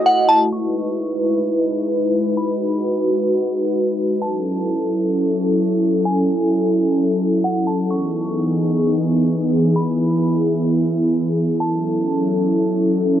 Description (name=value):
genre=hip hop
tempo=free time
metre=none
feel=none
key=E major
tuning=A4 = 441 Hz
part: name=airy breathy pad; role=sustained chords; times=0.0-13.2 s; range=E3 to D#5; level=-17 LUFS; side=equal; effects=chorus
part: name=glassy synth bell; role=melody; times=0.1-12.5 s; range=F#5 to C#6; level=-22 LUFS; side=equal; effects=chorus, tremolo, cassette tape
room=moderate studio reverb, RT60 0.5 s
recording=home recording on cassette, low-pass filter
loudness=-16 LUFS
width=side -10 dB against mid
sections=0.5-13.2 A section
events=filter sweep 0.5-13.2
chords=0.0 F#m7; 0.5 Emaj7; 4.2 F#m7; 7.9 Emaj7; 11.6 F#m7